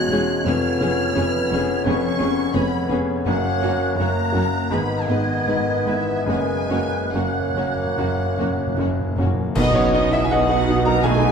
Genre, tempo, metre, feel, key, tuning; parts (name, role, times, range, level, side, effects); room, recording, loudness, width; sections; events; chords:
classical, romantic movement for piano and orchestra; 70-88 BPM; 4/4; rubato; B major; A4 = 438 Hz
clear concert grand piano; melody; 0.0-11.3 s; E1 to A#5; -22 LUFS; left 2 dB
warm symphonic violin section; melody; 0.0-11.3 s; B4 to F#6; -31 LUFS; left 4 dB
dark clarinet; second line; 0.0-11.3 s; C#5 to D#5; -30 LUFS; right 3 dB
flute section; second line; 0.0-11.3 s; B5 to G#6; -30 LUFS; equal
mellow bassoon; accompaniment; 0.0-11.3 s; G#3 to B3; -29 LUFS; right 1 dB
mellow French horn section; sustained chords; 0.0-11.3 s; C#3 to F#4; -31 LUFS; left 4 dB
warm trombone section; sustained chords; 0.0-11.3 s; C#3 to B3; -31 LUFS; right 3 dB
warm symphonic violin section; second line; 0.1-11.3 s; F#4 to A#5; -30 LUFS; equal
dark studio viola section; accompaniment; 0.1-11.3 s; G#3 to G#4; -29 LUFS; right 2 dB
rich chamber cello section; bass; 0.1-11.3 s; E2 to B2; -30 LUFS; right 5 dB
rich symphonic double bass section; bass; 0.1-11.3 s; E1 to B1; -30 LUFS; right 4 dB
timpani; percussion; 3.3-11.3 s; F#2 to B2; -29 LUFS; equal
clash cymbals and concert bass drum; percussion; 9.6-11.0 s; -30 LUFS; right 1 dB
wet recital hall reverb, RT60 1.6 s; -18 LUFS; side -6 dB against mid
0.0-9.6 A section; 9.6-11.3 B section
timpani fill 6.3-9.6; band accent 9.6-10.3
0.5 C#7/E#; 3.3 F#; 4.7 G#m; 6.3 F#; 9.6 B